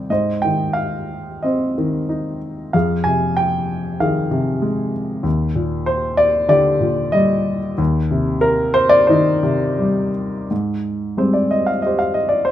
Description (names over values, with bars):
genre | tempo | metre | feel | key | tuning
classical, lyrical solo piano | 83-98 BPM | 4/4 | rubato | unclear | A4 = 439 Hz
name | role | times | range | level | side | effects
warm grand piano | solo | 0.0-12.5 s | Eb2 to Ab5 | -16 LUFS | equal | none
room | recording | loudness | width
light reverb | minimal, uncompressed stereo recording | -16 LUFS | side -11 dB against mid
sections
0.0-10.5 A section; 10.5-12.5 B section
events
none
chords
0.1 Ab; 2.7 Fm7; 5.3 Ebmaj7; 10.5 Abmaj7